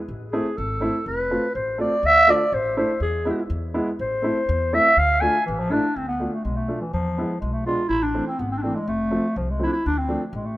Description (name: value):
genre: klezmer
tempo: 123 BPM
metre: 2/4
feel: straight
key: D dorian sharp4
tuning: A4 = 440 Hz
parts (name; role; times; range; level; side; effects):
- upright bass; bass; 0.1-10.6 s; F1 to E2; -28 LUFS; equal; none
- growling clarinet; melody; 0.3-10.6 s; E3 to G#5; -21 LUFS; equal; none
- warm upright piano; accompaniment; 0.3-10.2 s; E3 to F4; -27 LUFS; right 1 dB; none
room: light reverb, small room ambience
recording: rough home demo mix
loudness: -20 LUFS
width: side -16 dB against mid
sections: 0.0-6.0 A section; 6.0-10.6 B section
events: clarinet solo 0.0-6.0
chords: 0.1 Am; 1.1 F; 2.0 Dm; 3.0 E; 4.0 Am; 5.0 Dm; 6.9 E; 7.9 Am; 8.9 F; 9.9 Dm